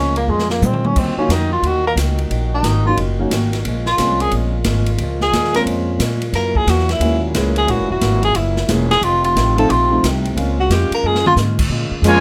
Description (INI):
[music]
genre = jazz, big band swing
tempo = 179 BPM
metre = 4/4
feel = swing 64% on 8ths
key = Bb minor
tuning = A4 = 442 Hz
[part]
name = mellow tenor saxophone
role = melody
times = 0.0-11.3 s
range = Ab3 to Bb4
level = -20 LUFS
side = equal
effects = none
[part]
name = fingerpicked swing-style acoustic guitar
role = accompaniment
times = 0.0-12.2 s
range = F2 to Gb4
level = -30 LUFS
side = equal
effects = none
[part]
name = warm trombone section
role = sustained chords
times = 0.0-12.2 s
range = Bb2 to Gb4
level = -29 LUFS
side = equal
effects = none
[part]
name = upright bass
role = bass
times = 0.0-12.2 s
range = Fb1 to Bb2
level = -21 LUFS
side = equal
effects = none
[part]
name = swinging big-band drum kit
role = drums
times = 0.2-12.1 s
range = crash cymbal, hi-hat, kick drum, ride cymbal, snare drum, toms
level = -26 LUFS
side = equal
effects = none
[part]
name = warm concert grand piano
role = accompaniment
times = 1.2-10.6 s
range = F3 to Ab4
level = -24 LUFS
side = equal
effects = none
[part]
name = clear trombone section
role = second line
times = 12.0-12.2 s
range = Db3 to Ab3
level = -16 LUFS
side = equal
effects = none
[part]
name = clear trumpet section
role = melody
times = 12.1-12.2 s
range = F4 to Ab5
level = -14 LUFS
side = equal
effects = none
[sound]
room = light reverb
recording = none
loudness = -17 LUFS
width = mono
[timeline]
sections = 0.0-11.7 A section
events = tenor saxophone solo 0.0-11.7; drum fill 0.3-1.0, 11.0-11.4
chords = 0.0 Bbm7; 1.0 Ebm7; 3.6 Bbm7; 6.3 Gb7; 9.0 F7; 10.4 Bbm7